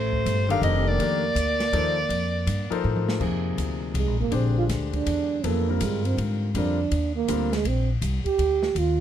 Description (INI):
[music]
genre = modal jazz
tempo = 162 BPM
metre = 3/4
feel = swing 65% on 8ths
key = Bb mixolydian from 3.2 s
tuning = A4 = 440 Hz
[part]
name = mellow soprano saxophone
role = melody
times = 0.0-2.8 s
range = C5 to F5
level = -26 LUFS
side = left 1 dB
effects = none
[part]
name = breathy trombone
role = second line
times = 0.0-9.0 s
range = Ab3 to G4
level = -27 LUFS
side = right 7 dB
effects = none
[part]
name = upright bass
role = bass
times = 0.0-9.0 s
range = F1 to A2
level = -26 LUFS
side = equal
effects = none
[part]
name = open jazz drum kit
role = drums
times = 0.1-8.9 s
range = crash cymbal, hi-hat, kick drum, ride cymbal, snare drum, toms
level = -35 LUFS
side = left 1 dB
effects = none
[part]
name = warm baby grand piano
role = accompaniment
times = 0.5-7.5 s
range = C3 to C5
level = -29 LUFS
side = left 7 dB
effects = none
[sound]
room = little or no reverb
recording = close, detailed microphones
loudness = -22 LUFS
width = side -10 dB against mid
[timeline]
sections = 0.0-3.2 A section; 3.2-9.0 B section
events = drum fill 2.8-3.2; trombone solo 3.2-9.0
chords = 0.0 F9; 1.0 Bb; 3.2 Bb7; 7.7 Ab/Bb (rootless)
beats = 0.26 0.63 | 1.00 1.36 1.74 | 2.10 2.47 2.84 | 3.21 3.58 3.95 | 4.32 4.69 5.06 | 5.43 5.80 6.17 | 6.54 6.91 7.28 | 7.65 8.02 8.39 | 8.76